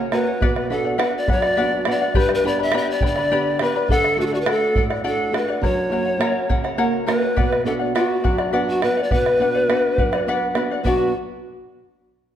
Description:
andean folk, Andean ensemble; 69 BPM (dotted quarters); 6/8; straight; B minor; A4 = 436 Hz
charango; accompaniment; 0.0-11.1 s; G4 to B5; -25 LUFS; left 4 dB
flamenco guitar; accompaniment; 0.0-11.1 s; F#2 to G4; -24 LUFS; right 2 dB
bright polished pan flute; melody; 0.1-11.1 s; F#4 to E5; -21 LUFS; left 1 dB
bombo; percussion; 0.1-11.1 s; -24 LUFS; right 1 dB
moderate recital hall reverb, RT60 1.4 s; dark, warm production; -17 LUFS; side -10 dB against mid
0.0-10.9 A section; 10.9-12.4 B section
0.4 Bm; 2.2 G; 3.9 D; 5.6 F#; 7.4 Bm
| 0.41 1.28 | 2.15 3.02 | 3.90 4.76 | 5.64 6.51 | 7.38 8.24 | 9.12 9.98 | 10.86

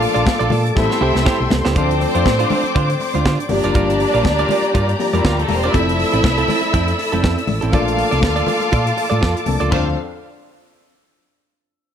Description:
disco; 121 BPM; 4/4; swing 56% on 16ths; D minor; A4 = 440 Hz
bright studio violin section; second line; 0.0-10.0 s; G3 to F5; -21 LUFS; equal
clean electric guitar; accompaniment; 0.0-9.9 s; C4 to D5; -23 LUFS; right 7 dB
dark grand piano; accompaniment; 0.0-10.0 s; F3 to A4; -23 LUFS; left 5 dB
rich studio string section; sustained chords; 0.0-9.9 s; D3 to E6; -24 LUFS; left 1 dB
hollow-body short-scale fingered electric bass; bass; 0.0-10.0 s; E1 to D3; -20 LUFS; equal
tight funk drum kit; drums; 0.0-9.8 s; hi-hat, kick drum, snare drum, splash cymbal, toms; -21 LUFS; right 1 dB
congas; percussion; 0.0-10.0 s; -26 LUFS; left 6 dB
small room ambience; -14 LUFS; side -8 dB against mid
0.0-1.8 A section; 1.8-9.7 B section; 9.7-11.7 C section
drum fill 0.8-1.8
0.0 Bbmaj7; 0.8 Am7; 1.8 Dm7; 3.5 Gm7; 5.7 Fmaj7; 7.7 Bbmaj7; 9.7 Dm7
0.27 0.76 1.26 | 1.76 2.26 2.75 3.25 | 3.75 4.25 4.75 5.24 | 5.74 6.24 6.74 7.23 | 7.73 8.23 8.73 9.22 | 9.72

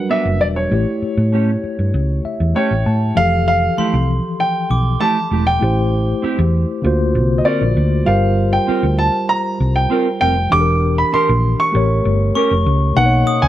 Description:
soul; 98 BPM; 4/4; straight; A4 = 438 Hz
warm grand piano; melody; 0.0-13.5 s; C#5 to D6; -18 LUFS; equal
mellow tine electric piano; accompaniment; 0.0-13.5 s; B2 to A5; -20 LUFS; left 2 dB; medium stereo tremolo
mellow electric guitar; riff; 0.1-12.5 s; A3 to A#4; -21 LUFS; right 5 dB; wide subtle chorus
hollow-body short-scale fingered electric bass; bass; 0.3-13.5 s; E1 to A2; -16 LUFS; equal
glockenspiel with hard plastic mallets; texture; 3.8-5.4, 12.4-13.5 s; C6 to D#6; -25 LUFS; left 2 dB
mellow French horn section; sustained chords; 13.0-13.5 s; C#3 to D#4; -27 LUFS; right 1 dB; stereo widening
light reverb, small room ambience; -14 LUFS; side -13 dB against mid
0.0-3.2 A section; 3.2-13.0 B section
tine electric piano fill 1.9-3.2
0.0 Gmaj7; 0.7 A7; 3.2 Fmaj9; 5.6 Am7; 6.8 D7alt; 8.1 Gm7; 10.5 Em7b5; 11.7 A7b9; 13.0 Bmaj9
0.11 | 0.72 1.33 1.94 2.56 | 3.17 3.78 4.39 5.01 | 5.62 6.23 6.84 7.46 | 8.07 8.68 9.29 9.91 | 10.52 11.13 11.74 12.36 | 12.97

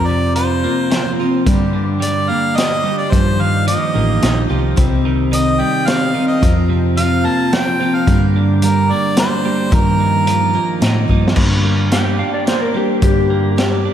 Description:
folk rock and heartland rock; 109 BPM; 3/4; straight; G minor; A4 = 439 Hz
clear harmonica; melody; 0.0-10.8 s; Bb4 to A5; -20 LUFS; equal; slapback echo
picked steel-string acoustic guitar; accompaniment; 0.0-13.9 s; G2 to Bb4; -21 LUFS; left 4 dB
twelve-string electric guitar; riff; 0.0-13.9 s; F2 to G4; -20 LUFS; right 8 dB; spring reverb
hollow-body short-scale fingered electric bass; bass; 0.0-13.9 s; A1 to A2; -17 LUFS; equal
vintage drum kit; drums; 0.4-13.7 s; crash cymbal, hi-hat, kick drum, snare drum; -18 LUFS; equal
clean lap steel guitar; second line; 11.9-13.9 s; G4 to G5; -19 LUFS; left 4 dB; slapback echo
moderate lush hall reverb, RT60 2.9 s; big arena sound; -13 LUFS; side -10 dB against mid
0.0-11.4 A section; 11.4-13.9 B section
drum fill 11.1; electric slide guitar solo 11.4-13.9
0.0 Fsus4; 1.5 Gm; 3.1 Ebadd9/G; 4.8 Cm; 6.4 Fsus4; 8.1 Gm; 9.7 Ebadd9/G; 11.4 Gm
0.36 0.91 | 1.46 2.01 2.56 | 3.12 3.67 4.22 | 4.77 5.32 5.87 | 6.42 6.97 7.52 | 8.07 8.62 9.17 | 9.72 10.27 10.82 | 11.38 11.93 12.48 | 13.03 13.58

